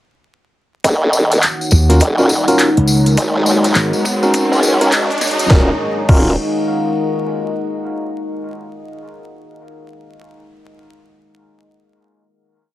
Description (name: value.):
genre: glitch hop.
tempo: 103 BPM.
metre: 4/4.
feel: swing 62% on 16ths.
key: Eb minor.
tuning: A4 = 440 Hz.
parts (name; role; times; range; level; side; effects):
dark analog pad; sustained chords; 0.8-5.8 s; Ab3 to Gb5; -22 LUFS; equal; chorus, sidechain pumping.
formant-sweep wobble bass; bass; 0.8-6.4 s; Eb1 to Db2; -15 LUFS; equal; chorus, tube saturation, high-pass filter.
drum and bass drum kit; drums; 0.8-6.2 s; crash cymbal, handclaps, hi-hat, snare drum; -19 LUFS; equal; overdrive.
electronic kick drum; drums; 0.8-6.2 s; none; -13 LUFS; equal; high-pass filter on kick.
tambourine; percussion; 0.8-5.5 s; none; -23 LUFS; left 2 dB; none.
riser; sound effects; 2.1-5.5 s; none; -24 LUFS; right 1 dB; none.
deep dark ambient pad; texture; 1.6-7.8 s; Eb4 to Db6; -21 LUFS; left 1 dB; chorus, built-in reverb, sidechain pumping.
slap bass with an envelope filter; bass; 1.7-3.9 s; Ab1 to Eb2; -11 LUFS; equal; tube saturation.
bright tine electric piano; stabs; 1.9-6.3 s; Db4 to Bb4; -18 LUFS; equal; sidechain pumping, dub echo.
room: moderate studio reverb, RT60 0.5 s.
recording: heavily compressed radio sound, vinyl crackle, high-pass filter.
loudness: -12 LUFS.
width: side -15 dB against mid.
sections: 0.8-5.5 build; 5.5-7.8 final chord.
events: build-up 0.8-5.5; riser 2.1-5.5.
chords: 0.8 Ebm7; 3.2 Ab9sus4; 5.5 Ebm7.